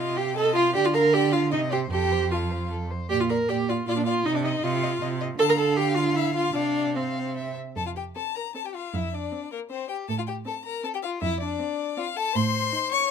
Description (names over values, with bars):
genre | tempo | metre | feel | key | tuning
quick classical-period movement for string quartet | 157 BPM | 3/4 | rubato | F major from 5.4 s | A4 = 440 Hz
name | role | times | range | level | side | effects
clear violin | melody | 0.0-13.1 s | Bb4 to Db6 | -31 LUFS | left 10 dB | none
rich violin | second line | 0.0-13.1 s | Bb3 to F5 | -33 LUFS | left 6 dB | none
rich viola | accompaniment | 0.0-13.0 s | C4 to Bb4 | -24 LUFS | right 2 dB | none
rich cello | bass | 0.0-12.7 s | F2 to D3 | -28 LUFS | right 5 dB | none
room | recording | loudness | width
little or no reverb | close, detailed microphones | -23 LUFS | side -7 dB against mid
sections
0.0-7.8 A section; 7.8-13.1 B section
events
none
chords
0.0 F5/C; 0.7 Bb6/D; 1.5 Cm; 1.9 F; 3.1 Bb; 4.3 F5/C; 5.4 Dm; 6.6 F5/C; 7.4 C; 7.8 F5; 10.1 Gm11/A (rootless); 11.2 F5; 12.4 Adim